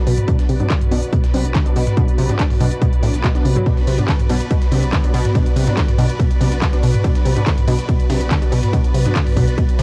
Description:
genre	driving peak-time techno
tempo	142 BPM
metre	4/4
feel	straight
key	B phrygian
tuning	A4 = 440 Hz
part	rave stab	stabs	0.0-9.8 s	F#3 to D4	-31 LUFS	equal	chorus, built-in reverb, sidechain pumping, tape echo
part	warm sub bass	bass	0.0-9.8 s	B1	-25 LUFS	equal	tube saturation, sidechain pumping, low-pass filter
part	dark studio string section	texture	0.0-9.8 s	B3 to D5	-29 LUFS	equal	sidechain pumping
part	warbly dusty pluck	riff	0.1-9.8 s	A2 to F#3	-23 LUFS	equal	chorus, overdrive, sidechain pumping, tape echo
part	breakbeat sampler-style drum kit	drums	0.1-9.8 s	hi-hat, snare drum	-40 LUFS	equal	none
part	techno drum kit	drums	0.1-9.8 s	handclaps, hi-hat, ride cymbal, toms	-26 LUFS	equal	overdrive, sidechain pumping on hats, cassette tape, sidechain pumping on toms, sidechain pumping on cymbals
part	electronic kick drum	drums	0.3-9.7 s	none	-20 LUFS	equal	overdrive, cassette tape
room	light reverb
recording	home recording on cassette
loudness	-17 LUFS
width	mono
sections	0.0-9.8 A section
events	none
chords	0.0 Bm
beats	| 0.28 0.70 1.13 1.55 | 1.97 2.39 2.82 3.24 | 3.66 4.08 4.51 4.93 | 5.35 5.77 6.20 6.62 | 7.04 7.46 7.89 8.31 | 8.73 9.15 9.58

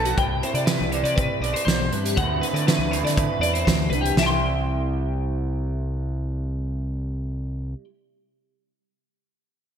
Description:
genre	math rock and midwest emo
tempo	120 BPM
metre	4/4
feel	straight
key	C major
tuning	A4 = 444 Hz
part	electric guitar through a small old amp	accompaniment	0.0-7.9 s	B2 to D5	-29 LUFS	right 7 dB	lush chorus
part	twelve-string electric guitar	arpeggios	0.0-7.8 s	F#4 to C6	-26 LUFS	left 4 dB	analog chorus
part	growling fingered electric bass	bass	0.0-7.7 s	B1 to D3	-26 LUFS	equal	overdrive
part	loose indie drum kit	drums	0.1-4.3 s	hi-hat, kick drum, snare drum	-24 LUFS	right 1 dB	gated reverb
room	moderate lush hall reverb, RT60 1.8 s, small room ambience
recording	bright 1980s-style digital production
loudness	-21 LUFS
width	side -8 dB against mid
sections	0.0-4.2 A section; 4.2-8.2 B section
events	none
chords	0.2 Cmaj9; 2.2 D13; 4.2 C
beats	| 0.17 0.67 1.17 1.67 | 2.17 2.67 3.17 3.67 | 4.17 4.67 5.17 5.67 | 6.17 6.67 7.17 7.67

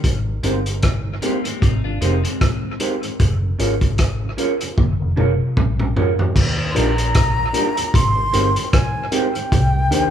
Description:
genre	lovers rock reggae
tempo	76 BPM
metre	4/4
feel	swing 57% on 16ths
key	unclear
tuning	A4 = 440 Hz
part	vintage muted fingered electric bass	bass	0.0-10.1 s	F1 to Eb2	-21 LUFS	equal	none
part	vintage drum kit	drums	0.0-10.1 s	crash cymbal, hi-hat, kick drum, rim click, toms	-19 LUFS	equal	none
part	mellow tonewheel organ	accompaniment	0.3-10.0 s	Eb2 to G4	-35 LUFS	right 4 dB	none
part	mellow tine electric piano	accompaniment	0.4-10.1 s	C4 to Bb4	-26 LUFS	equal	dub echo
part	electric guitar through a small old amp	stabs	0.4-10.0 s	Ab3 to D5	-26 LUFS	right 4 dB	none
part	clean electric guitar	arpeggios	1.2-3.2 s	G3 to F4	-29 LUFS	left 4 dB	none
part	breathy concert flute	melody	6.7-10.1 s	G5 to C6	-21 LUFS	equal	none
room	light reverb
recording	band playing live in one room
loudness	-16 LUFS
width	side -9 dB against mid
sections	0.0-6.4 A section; 6.4-10.1 B section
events	drum fill 4.8-6.4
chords	0.0 Abmaj7; 3.2 Gbmaj7; 6.4 Ebmaj7; 7.9 Abmaj7; 9.5 Cm7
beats	| 0.04 0.83 1.62 2.41 | 3.20 3.99 4.78 5.57 | 6.36 7.15 7.94 8.73 | 9.52

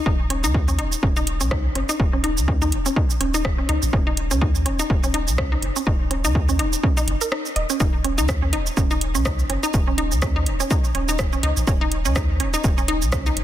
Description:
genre	minimal techno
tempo	124 BPM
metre	4/4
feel	swing 57% on 16ths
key	Eb minor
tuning	A4 = 439 Hz
part	resonant blip pluck	riff	0.1-13.3 s	Db4 to Eb5	-25 LUFS	equal	chorus, vintage 12-bit sampler grit, sidechain pumping, dub echo
part	punchy sub bass	bass	0.1-13.4 s	Eb1 to Eb2	-24 LUFS	equal	sidechain pumping
part	electronic kick drum	drums	0.1-13.2 s	none	-22 LUFS	equal	none
part	garage drum kit	drums	0.3-13.4 s	hi-hat, rim click, shaker	-27 LUFS	right 2 dB	soft clipping on snare
room	light reverb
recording	dense, heavily limited modern master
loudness	-18 LUFS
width	side -12 dB against mid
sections	0.0-7.8 A section; 7.8-13.4 B section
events	break 7.3-7.8; drop 7.8-13.4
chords	0.0 Eb5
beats	| 0.06 0.55 1.03 1.51 | 2.00 2.48 2.96 3.45 | 3.93 4.42 4.90 5.38 | 5.87 6.35 6.83 7.32 | 7.80 8.29 8.77 9.25 | 9.74 10.22 10.71 11.19 | 11.67 12.16 12.64 13.12

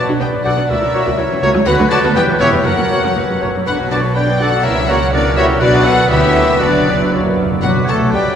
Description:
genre	quick classical-period movement for symphony orchestra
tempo	122 BPM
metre	2/4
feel	rubato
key	B minor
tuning	A4 = 441 Hz
part	rich studio violin section	melody	0.0-8.4 s	D5 to A5	-21 LUFS	left 4 dB	none
part	mellow clarinet	second line	0.0-8.4 s	F#4 to D5	-21 LUFS	left 1 dB	none
part	silver concert flute	second line	0.0-8.4 s	F#4 to D6	-23 LUFS	left 1 dB	none
part	warm chamber violin section	second line	0.0-8.2 s	D4 to A4	-23 LUFS	left 2 dB	none
part	warm oboe	second line	0.0-8.4 s	B4 to A5	-23 LUFS	equal	none
part	dark French horn section	sustained chords	0.0-8.4 s	F#3 to F#4	-23 LUFS	left 2 dB	none
part	mellow trumpet	stabs	0.0-8.4 s	F#4 to D5	-21 LUFS	equal	none
part	warm studio viola section	accompaniment	0.1-8.4 s	C#3 to D5	-21 LUFS	right 1 dB	none
part	warm studio cello section	bass	0.1-8.4 s	C#2 to A3	-20 LUFS	right 2 dB	none
part	warm studio double bass section	bass	0.2-8.3 s	E1 to D2	-21 LUFS	right 1 dB	none
part	timpani	percussion	7.1-8.3 s	F#2 to B2	-26 LUFS	right 1 dB	none
part	warm bassoon	accompaniment	7.6-8.4 s	none	barely audible	none	none
room	wet cathedral reverb, RT60 5.2 s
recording	recorded in a church or concert hall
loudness	-11 LUFS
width	side -8 dB against mid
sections	0.0-7.6 A section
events	timpani fill 7.1-7.6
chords	0.0 Bm; 0.7 F#7/C#; 1.7 Bm/D; 2.2 C#m7b5/E; 2.7 F#; 3.7 Bm; 4.7 F#7/C#; 5.6 Bm; 6.1 Bm/D; 6.6 Bm/F#; 7.1 F#; 7.6 Bm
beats	0.21 | 0.70 1.19 | 1.67 2.16 | 2.65 3.16 | 3.67 4.17 | 4.65 5.13 | 5.62 6.10 | 6.61 7.12 | 7.63 8.13

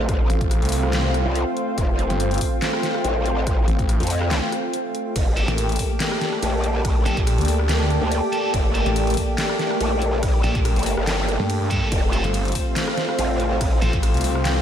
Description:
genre	heavy wobble dubstep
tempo	142 BPM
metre	4/4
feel	swing 53% on 16ths, half-time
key	G minor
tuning	A4 = 440 Hz
part	lush unison pad	sustained chords	0.0-14.6 s	A3 to G4	-25 LUFS	equal	chorus, sidechain pumping
part	growl bass	bass	0.0-13.8 s	F1 to F2	-23 LUFS	equal	chorus, overdrive
part	warbly tape-like pad	texture	0.0-14.6 s	F4 to A5	-30 LUFS	equal	chorus, built-in reverb, sidechain pumping
part	dubstep drum kit	drums	0.1-14.5 s	handclaps, hi-hat, ride cymbal, rim click, snare drum	-28 LUFS	left 1 dB	none
part	electronic kick drum	drums	0.1-14.0 s	none	-22 LUFS	equal	none
part	snarling distorted saw bass	bass	0.3-14.6 s	G1 to G2	-22 LUFS	equal	distortion, overdrive
part	high-gain distorted guitar	stabs	5.4-13.9 s	Bb3 to A4	-31 LUFS	right 1 dB	distortion, ping-pong delay
room	moderate lush hall reverb, RT60 1.9 s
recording	dreamy mix soaked in reverb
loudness	-19 LUFS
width	side -9 dB against mid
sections	0.0-14.6 A section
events	break 4.7-5.2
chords	0.0 F; 5.2 Gmadd9; 11.9 F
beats	| 0.09 0.51 0.93 1.35 | 1.78 2.20 2.62 3.04 | 3.47 3.89 4.31 4.74 | 5.16 5.58 6.00 6.42 | 6.85 7.27 7.69 8.12 | 8.54 8.96 9.38 9.81 | 10.23 10.65 11.07 11.50 | 11.92 12.34 12.76 13.19 | 13.61 14.03 14.45

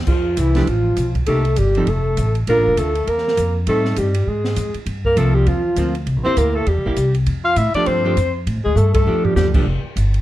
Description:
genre	jazz, small-group swing and bop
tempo	200 BPM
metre	4/4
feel	swing 60% on 8ths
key	F major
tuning	A4 = 440 Hz
part	upright bass	bass	0.0-10.2 s	F1 to A2	-19 LUFS	equal	none
part	mellow alto saxophone	melody	0.1-9.5 s	E4 to F5	-20 LUFS	left 2 dB	none
part	breathy tenor saxophone	second line	0.1-9.5 s	E3 to F4	-26 LUFS	right 3 dB	none
part	open jazz drum kit	drums	0.1-10.2 s	crash cymbal, hi-hat, kick drum, ride cymbal, snare drum, toms	-24 LUFS	right 1 dB	none
part	archtop guitar, miked and amplified	accompaniment	0.6-9.7 s	F3 to A4	-23 LUFS	right 3 dB	none
room	light reverb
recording	dark, warm production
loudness	-15 LUFS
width	side -14 dB against mid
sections	0.1-9.7 A section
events	drum fill 8.8-9.4; band accent 8.9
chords	0.1 F; 1.3 Cm7; 1.9 F; 2.5 Bbmaj7; 3.7 Am7b5; 4.3 Fm; 4.9 Gm7; 6.1 C7; 7.3 F69; 9.7 Fsus2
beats	| 0.07 0.37 0.67 0.97 | 1.27 1.57 1.87 2.17 | 2.47 2.77 3.07 3.37 | 3.67 3.97 4.27 4.57 | 4.87 5.17 5.47 5.77 | 6.07 6.37 6.67 6.97 | 7.27 7.57 7.87 8.16 | 8.46 8.76 9.06 9.36 | 9.66 9.96

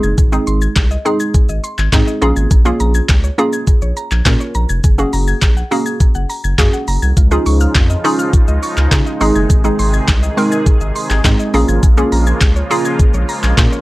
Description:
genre	dance-pop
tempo	103 BPM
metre	4/4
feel	straight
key	unclear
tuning	A4 = 442 Hz
part	hollow square pluck	accompaniment	0.0-13.8 s	Ab3 to Bb4	-17 LUFS	right 1 dB	chorus, sidechain pumping
part	mallet-like synth pluck	arpeggios	0.0-13.8 s	F4 to Ab6	-24 LUFS	left 1 dB	chorus, sidechain pumping, analog delay
part	saturated sub bass	bass	0.0-13.7 s	F1 to Db3	-15 LUFS	equal	sidechain pumping
part	smooth R&B drum kit	drums	0.0-13.8 s	handclaps, hi-hat, kick drum, shaker, snare drum	-13 LUFS	equal	none
part	filtered supersaw swell	sustained chords	7.2-13.8 s	C3 to Ab4	-22 LUFS	equal	sidechain pumping
room	little or no reverb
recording	dry, gritty hardware recording, cassette tape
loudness	-11 LUFS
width	side -19 dB against mid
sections	0.0-13.8 A section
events	none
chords	0.0 Ab; 2.2 Bbm7; 4.8 Gbadd9; 7.2 Dbadd9; 9.2 Ab; 11.5 Bbm7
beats	| 0.18 0.76 1.34 1.93 | 2.51 3.09 3.67 4.26 | 4.84 5.42 6.00 6.59 | 7.17 7.75 8.34 8.92 | 9.50 10.08 10.66 11.25 | 11.83 12.41 12.99 13.58

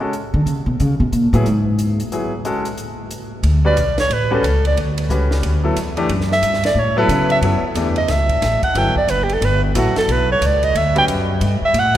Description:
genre	modal jazz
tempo	181 BPM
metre	4/4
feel	swing 63% on 8ths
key	A major, D major from 3.4 s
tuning	A4 = 445 Hz
part	clear baby grand piano	accompaniment	0.0-12.0 s	E3 to B4	-23 LUFS	left 2 dB	none
part	compact cocktail drum kit	drums	0.1-12.0 s	hi-hat, kick drum, ride cymbal, snare drum	-28 LUFS	right 1 dB	none
part	upright bass	bass	0.3-12.0 s	F#1 to D3	-18 LUFS	equal	none
part	breathy soprano saxophone	melody	3.7-12.0 s	D4 to G5	-18 LUFS	right 2 dB	none
room	wet cathedral reverb, RT60 6.7 s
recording	recorded in a church or concert hall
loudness	-15 LUFS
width	side -12 dB against mid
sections	0.0-3.4 A section; 3.4-12.0 A section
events	upright bass solo 0.0-3.4; soprano saxophone solo 3.4-12.0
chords	0.0 Amaj9; 3.4 Dmaj9; 8.8 Gmaj9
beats	0.13 0.47 | 0.80 1.13 1.46 1.79 | 2.12 2.45 2.78 3.11 | 3.44 3.78 4.11 4.44 | 4.77 5.10 5.44 5.77 | 6.10 6.43 6.76 7.10 | 7.43 7.76 8.09 8.43 | 8.76 9.09 9.42 9.76 | 10.09 10.42 10.75 11.08 | 11.42 11.75

